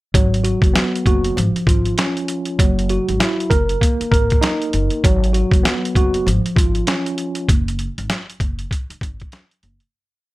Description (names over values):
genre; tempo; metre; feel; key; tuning
hip hop, boom-bap hip-hop; 98 BPM; 4/4; swing 60% on 16ths; unclear; A4 = 440 Hz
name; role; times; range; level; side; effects
mellow tine electric piano; accompaniment; 0.1-7.5 s; E#3 to A#4; -20 LUFS; right 1 dB; medium stereo tremolo, cassette tape, high-pass filter, low-pass filter, plate reverb
upright bass; bass; 0.1-9.8 s; F#1 to G#1; -21 LUFS; equal; none
boom bap sampler-style drum kit; drums; 0.1-9.9 s; hi-hat, kick drum, snare drum; -17 LUFS; equal; none
room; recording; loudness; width
light reverb; none; -15 LUFS; side -18 dB against mid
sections
0.1-9.9 verse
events
break 7.5-9.9; fade-out 7.5-9.9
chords
0.1 G#m7; 1.4 C#/G#; 2.6 Esus2/F#; 3.5 F#69; 5.0 G#m7; 6.3 C#/G#; 7.5 F#sus2